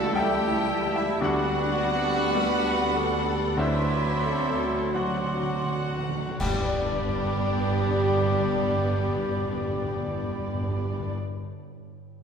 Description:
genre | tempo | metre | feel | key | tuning
classical, romantic movement for piano and orchestra | 39-57 BPM | 4/4 | rubato | G major | A4 = 440 Hz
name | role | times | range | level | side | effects
clear grand piano | melody | 0.0-12.2 s | C#2 to A5 | -32 LUFS | left 2 dB | none
rich studio violin section | melody | 0.0-11.2 s | D4 to E4 | -39 LUFS | left 4 dB | none
rich studio violin section | second line | 0.0-11.1 s | D5 to A5 | -35 LUFS | left 3 dB | none
warm oboe | second line | 0.0-11.2 s | D5 to E5 | -37 LUFS | equal | none
rich studio viola section | accompaniment | 0.0-11.2 s | F#3 to C4 | -34 LUFS | equal | none
warm bassoon | accompaniment | 0.0-11.2 s | F#3 to G3 | -35 LUFS | right 2 dB | none
clear trombone section | sustained chords | 0.0-11.2 s | D3 to A3 | -35 LUFS | right 1 dB | none
mellow French horn section | sustained chords | 0.0-11.2 s | A3 to G4 | -35 LUFS | left 6 dB | none
clear trumpet section | stabs | 0.0-11.2 s | E4 to A4 | -33 LUFS | equal | none
rich studio cello section | bass | 0.0-11.2 s | G2 to B4 | -34 LUFS | right 3 dB | none
rich studio double bass section | bass | 0.0-11.1 s | G1 to D2 | -34 LUFS | right 3 dB | none
hollow small flute group | second line | 0.1-11.2 s | A5 to C6 | -35 LUFS | right 3 dB | none
cymbal swell, clash cymbals and concert bass drum | percussion | 1.2-9.1 s | none | -37 LUFS | left 1 dB | none
timpani | percussion | 3.6-11.1 s | G2 to D3 | -33 LUFS | right 1 dB | none
room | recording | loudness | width
wet scoring stage reverb, RT60 1.9 s | minimal, uncompressed stereo recording | -23 LUFS | side -6 dB against mid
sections
0.0-6.4 A section; 6.4-11.8 B section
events
slowing down 0.0-6.4; timpani fill 3.6-6.4; band accent 6.4-7.7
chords
0.0 A7/C#; 1.2 G/D; 3.6 D9; 6.4 G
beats
0.16 | 1.22 2.36 3.58 4.93 | 6.39 7.75 9.12 10.47

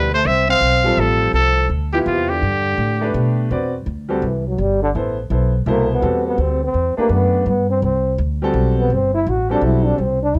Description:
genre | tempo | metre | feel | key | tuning
modal jazz | 166 BPM | 3/4 | swing 63% on 8ths | C lydian from 3.5 s | A4 = 439 Hz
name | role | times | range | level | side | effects
bright trumpet | melody | 0.0-3.1 s | F4 to F5 | -20 LUFS | equal | plate reverb
breathy trombone | second line | 0.0-10.4 s | C3 to F#4 | -22 LUFS | equal | none
clear concert grand piano | accompaniment | 0.0-10.0 s | B2 to D5 | -24 LUFS | equal | none
upright bass | bass | 0.0-10.4 s | G1 to B2 | -22 LUFS | equal | none
room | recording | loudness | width
moderate studio reverb, RT60 0.5 s | none | -18 LUFS | mono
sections
0.0-3.5 A section; 3.5-10.4 B section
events
trombone solo 3.5-10.4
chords
0.0 Fmaj9; 2.4 G; 3.5 Cmaj9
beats
| 0.26 0.62 0.98 | 1.34 1.70 2.06 | 2.42 2.78 3.14 | 3.50 3.86 4.22 | 4.58 4.94 5.30 | 5.66 6.02 6.38 | 6.75 7.11 7.47 | 7.83 8.19 8.55 | 8.91 9.27 9.63 | 9.99 10.35

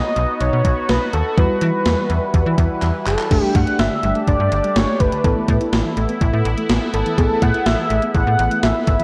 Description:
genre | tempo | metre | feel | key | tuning
synth-pop | 124 BPM | 4/4 | straight | unclear | A4 = 440 Hz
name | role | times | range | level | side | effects
octave-doubled lead | melody | 0.0-9.0 s | A4 to F#5 | -24 LUFS | equal | chorus, shimmer reverb
mellow FM electric piano | accompaniment | 0.0-9.0 s | G3 to A4 | -28 LUFS | equal | chorus, tremolo, shimmer reverb
sweeping resonant pad | sustained chords | 0.0-9.0 s | E3 to B4 | -28 LUFS | equal | chorus, shimmer reverb
slap-like FM bass | bass | 0.2-9.0 s | F#1 to E3 | -22 LUFS | equal | none
gated 80s digital drum machine | drums | 0.2-9.0 s | crash cymbal, handclaps, hi-hat, kick drum, snare drum | -22 LUFS | equal | gated reverb, gated reverb snare, overdrive
soft round pluck | arpeggios | 3.3-9.0 s | D3 to E5 | -29 LUFS | equal | chorus, shimmer reverb
room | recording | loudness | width
moderate concert hall reverb, RT60 2.1 s | worn, warbling old tape, cassette tape, warbly pitch drift | -18 LUFS | mono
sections
0.0-3.3 A section; 3.3-9.0 B section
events
drum fill 2.8-3.3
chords
0.0 B; 1.4 Emadd9; 3.3 Gsus2; 5.2 Asus2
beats
0.41 0.89 | 1.37 1.86 2.34 2.83 | 3.31 3.79 4.28 4.76 | 5.25 5.73 6.21 6.70 | 7.18 7.66 8.15 8.63

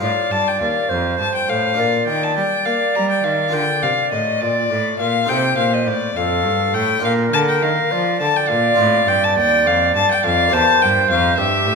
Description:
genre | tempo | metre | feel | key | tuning
classical, baroque-style sonata movement with continuo | 69 BPM (dotted quarters) | 12/8 | straight | Bb major | A4 = 440 Hz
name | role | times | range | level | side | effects
rich violin | melody | 0.0-11.8 s | D5 to Bb5 | -19 LUFS | left 7 dB | none
bright baroque flute | second line | 0.0-11.8 s | G4 to D5 | -19 LUFS | right 4 dB | none
harpsichord | accompaniment | 0.0-11.8 s | Eb2 to C5 | -25 LUFS | left 2 dB | none
rich cello | bass | 0.0-11.8 s | Eb2 to Bb3 | -23 LUFS | right 2 dB | none
room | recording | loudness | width
wet recital hall reverb, RT60 1.4 s | minimal, uncompressed stereo recording | -15 LUFS | side -4 dB against mid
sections
0.0-11.8 A section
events
none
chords
0.0 F7; 1.8 Bb; 5.3 F7; 7.0 Bb; 8.8 F; 10.5 C7/E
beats
| 0.01 0.90 1.78 2.66 | 3.54 4.41 5.29 6.16 | 7.04 7.92 8.79 9.66 | 10.53 11.39

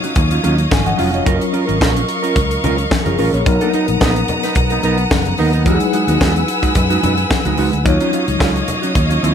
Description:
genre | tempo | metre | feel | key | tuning
disco | 109 BPM | 4/4 | straight | Eb minor | A4 = 440 Hz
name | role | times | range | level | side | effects
mellow electric guitar | accompaniment | 0.0-9.3 s | Gb3 to B4 | -20 LUFS | right 6 dB | none
mellow tine electric piano | accompaniment | 0.0-9.3 s | Gb3 to Ab5 | -21 LUFS | left 4 dB | medium stereo tremolo
clear studio string section | sustained chords | 0.0-9.3 s | B3 to E6 | -21 LUFS | equal | none
tight funk drum kit | drums | 0.0-9.3 s | hi-hat, kick drum, snare drum | -18 LUFS | equal | none
fingered electric bass | bass | 0.2-9.3 s | F1 to F#2 | -18 LUFS | equal | none
congas | percussion | 0.2-9.3 s | none | -26 LUFS | left 5 dB | none
room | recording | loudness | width
light reverb | none | -13 LUFS | side -8 dB against mid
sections
0.0-9.3 A section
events
none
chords
0.0 Ebm9; 1.3 Gbmaj7; 3.5 Bmaj7; 5.7 Emaj9; 7.9 Ebm9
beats
0.17 0.71 | 1.26 1.81 2.36 2.91 | 3.46 4.01 4.56 5.11 | 5.66 6.21 6.76 7.31 | 7.86 8.41 8.96

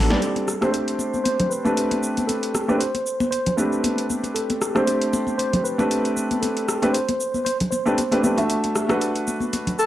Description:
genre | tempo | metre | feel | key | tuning
deep house | 116 BPM | 4/4 | swing 55% on 16ths | A dorian | A4 = 440 Hz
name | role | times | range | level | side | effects
felt-muted upright piano | stabs | 0.0-9.9 s | G3 to E5 | -22 LUFS | equal | low-pass filter
mellow tine electric piano | melody | 0.1-8.2 s | A4 to C5 | -27 LUFS | equal | medium stereo tremolo, tape echo
deep house drum kit | drums | 0.1-9.9 s | cabasa, hi-hat, rim click, snare drum | -27 LUFS | equal | overdrive
congas | percussion | 0.1-9.8 s | none | -28 LUFS | left 2 dB | none
breathy alto saxophone | melody | 9.8-9.9 s | A4 | -17 LUFS | left 1 dB | vintage 12-bit sampler grit
room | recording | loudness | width
moderate plate reverb, RT60 1.4 s | dry, gritty hardware recording, vinyl crackle | -20 LUFS | side -13 dB against mid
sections
0.2-9.9 A section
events
drum fill 0.0; band accent 0.1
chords
0.2 Am11; 8.5 Bm7/A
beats
| 0.22 0.74 1.25 1.77 | 2.29 2.81 3.32 3.84 | 4.36 4.88 5.39 5.91 | 6.43 6.95 7.46 7.98 | 8.50 9.01 9.53

